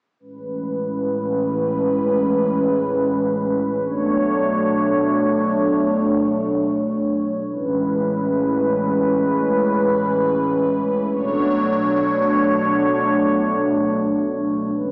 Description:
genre	hip hop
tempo	free time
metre	none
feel	none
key	A major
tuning	A4 = 440 Hz
part	warm analog pad	solo	0.2-14.9 s	A2 to C#5	-17 LUFS	equal	chorus
room	light reverb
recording	dry, gritty hardware recording, transformer saturation, small speaker sound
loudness	-17 LUFS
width	side -35 dB against mid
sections	0.2-7.5 A section; 7.5-14.9 B section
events	none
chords	0.2 Amaj7; 3.8 Bm7; 7.5 Amaj7; 11.1 Bm7

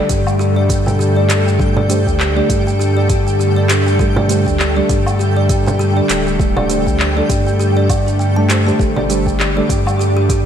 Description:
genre	organic downtempo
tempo	100 BPM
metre	4/4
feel	swing 57% on 16ths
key	unclear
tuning	A4 = 440 Hz
part	deep mellow chord stab	accompaniment	0.0-9.7 s	G3 to D5	-21 LUFS	right 2 dB	chorus, cassette tape, sidechain pumping, ping-pong delay
part	bowed-like drone	sustained chords	0.0-10.5 s	D3 to A4	-19 LUFS	equal	built-in reverb, sidechain pumping
part	kalimba	arpeggios	0.0-10.4 s	G4 to A5	-21 LUFS	equal	ping-pong delay
part	twinkling granular texture	texture	0.1-10.5 s	G4 to G5	-28 LUFS	equal	built-in reverb, analog chorus
part	warm sub bass	bass	0.1-10.5 s	D1 to G2	-17 LUFS	equal	sidechain pumping
part	electronic kick drum	drums	0.1-10.4 s	none	-19 LUFS	equal	overdrive
part	organic electronic drum kit	drums	0.1-10.4 s	handclaps, hi-hat, shaker, woodblock	-22 LUFS	equal	none
part	frame drum	percussion	0.9-9.1 s	none	-24 LUFS	right 3 dB	none
room	moderate lush hall reverb, RT60 1.9 s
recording	dreamy mix soaked in reverb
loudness	-12 LUFS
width	side -8 dB against mid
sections	0.0-10.5 A section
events	none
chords	0.0 Gsus2

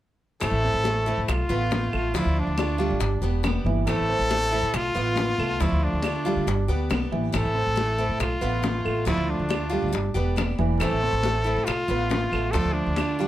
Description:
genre	latin, Cuban son and guajira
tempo	139 BPM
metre	4/4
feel	straight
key	A minor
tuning	A4 = 440 Hz
part	clear trumpet	melody	0.4-13.3 s	D4 to A4	-27 LUFS	equal	plate reverb
part	picked acoustic archtop guitar	accompaniment	0.4-13.3 s	D3 to G4	-31 LUFS	left 2 dB	none
part	upright bass	bass	0.4-13.3 s	E1 to D3	-26 LUFS	equal	none
part	bongos	percussion	0.4-13.3 s	none	-32 LUFS	left 4 dB	none
part	claves	percussion	0.4-13.2 s	none	-35 LUFS	right 2 dB	none
part	congas	percussion	0.4-13.3 s	none	-34 LUFS	left 4 dB	none
part	dark concert grand piano	arpeggios	0.6-13.3 s	E3 to D5	-29 LUFS	right 4 dB	none
room	light reverb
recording	none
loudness	-22 LUFS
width	side -13 dB against mid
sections	0.4-13.3 A section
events	none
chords	0.4 Am; 1.3 Bm7b5; 2.1 Dm; 3.0 G; 3.9 Am; 4.7 Bm7b5; 5.6 Dm; 6.5 G; 7.3 Am; 8.2 Bm7b5; 9.1 Dm; 9.9 G; 10.8 Am; 11.7 Bm7b5; 12.5 Dm

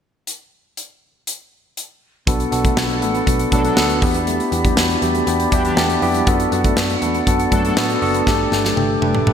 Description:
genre	1980s-style pop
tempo	120 BPM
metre	4/4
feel	straight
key	B minor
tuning	A4 = 440 Hz
part	modern studio drum kit	drums	0.3-9.3 s	hi-hat, kick drum, snare drum, toms	-20 LUFS	equal	gated reverb
part	tine electric piano	accompaniment	2.3-9.3 s	A3 to B4	-19 LUFS	left 1 dB	medium stereo tremolo
part	mellow flute section	sustained chords	2.3-9.3 s	G4 to D6	-25 LUFS	equal	none
part	electric guitar at the edge of break-up	riff	2.3-9.3 s	F#3 to B3	-28 LUFS	right 4 dB	none
part	vintage muted picked electric bass	bass	2.3-9.3 s	F#1 to A2	-24 LUFS	equal	none
part	analog synth brass	stabs	3.5-7.9 s	E3 to A4	-28 LUFS	left 1 dB	none
room	wet lush hall reverb, RT60 2.1 s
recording	bright 1980s-style digital production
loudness	-15 LUFS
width	side -8 dB against mid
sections	0.3-2.3 A section; 2.3-9.3 B section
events	drum fill 8.3-9.3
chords	0.3 N.C.; 2.3 Bm7; 4.0 Em7; 6.3 Bm7; 8.3 Gsus2

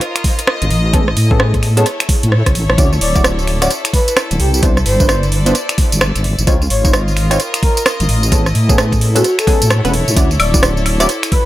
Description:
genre	UK garage, two-step garage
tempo	130 BPM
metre	4/4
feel	swing 62% on 16ths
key	unclear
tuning	A4 = 439 Hz
part	garage drum kit	drums	0.0-11.4 s	finger snaps, hi-hat, rim click, tambourine, woodblock	-17 LUFS	right 1 dB	overdrive, tape echo
part	rich chamber string section	texture	0.0-11.5 s	E4 to D#5	-24 LUFS	left 2 dB	sidechain pumping
part	electronic kick drum	drums	0.2-11.4 s	none	-14 LUFS	equal	overdrive
part	deep soft wobble bass	bass	0.6-11.1 s	D1 to A2	-15 LUFS	equal	chorus, sidechain pumping
part	punchy chord stab	stabs	0.9-11.1 s	C#3 to D5	-20 LUFS	equal	chorus, dub echo
part	breathy flute-like synth lead	melody	3.0-11.5 s	F#4 to D5	-21 LUFS	equal	tremolo, lush chorus, cassette tape, tape echo
room	digital ambience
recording	echo-heavy mix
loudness	-11 LUFS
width	side -15 dB against mid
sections	0.0-11.5 A section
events	drum fill 2.3-2.8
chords	0.0 C#add9 (rootless); 0.9 Amaj9; 2.8 Dmaj9; 4.4 Cmaj9; 6.5 C#maj9; 8.3 Amaj9; 10.2 Dmaj9

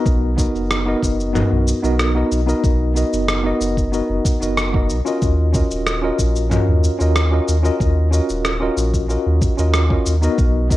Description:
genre	sunset chillout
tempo	93 BPM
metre	4/4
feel	straight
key	Eb minor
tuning	A4 = 440 Hz
part	tine electric piano	accompaniment	0.0-10.8 s	Cb4 to Eb5	-20 LUFS	equal	medium stereo tremolo, auto-pan, ping-pong delay
part	warm sub bass	bass	0.1-10.8 s	Eb1 to Eb2	-19 LUFS	equal	none
part	dusty soul sampler-style drum kit	drums	0.1-10.8 s	rim click, shaker, toms	-23 LUFS	equal	none
part	electronic kick drum	drums	0.1-10.8 s	none	-19 LUFS	equal	none
room	light reverb, digital ambience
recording	worn, warbling old tape, cassette tape, warbly pitch drift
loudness	-15 LUFS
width	side -16 dB against mid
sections	0.0-10.8 A section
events	none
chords	0.1 Bmaj7; 5.2 Ebm9

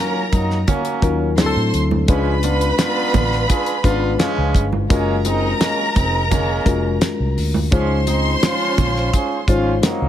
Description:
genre	lush 1970s-style soul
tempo	85 BPM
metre	4/4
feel	straight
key	Db major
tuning	A4 = 443 Hz
part	warm studio violin section	second line	0.0-9.8 s	Bb4 to C6	-24 LUFS	right 1 dB	none
part	reed electric piano	accompaniment	0.0-10.1 s	Gb3 to C5	-22 LUFS	left 5 dB	overdrive
part	warm horn section	stabs	0.0-10.1 s	F3 to Ab4	-24 LUFS	right 2 dB	none
part	vintage muted fingered electric bass	bass	0.3-10.1 s	F1 to A2	-21 LUFS	equal	none
part	damped 70s drum kit	drums	0.3-10.0 s	hi-hat, kick drum, snare drum	-19 LUFS	equal	none
part	congas	percussion	0.3-10.0 s	none	-26 LUFS	right 6 dB	none
part	large celesta	texture	4.2-7.0 s	Eb5 to F5	-35 LUFS	left 5 dB	none
room	small room ambience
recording	none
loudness	-15 LUFS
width	side -11 dB against mid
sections	0.0-10.1 A section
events	none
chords	0.0 Ebm7; 1.4 D9; 2.1 Db7b9; 4.9 Gbmaj9; 7.7 Dbmaj7

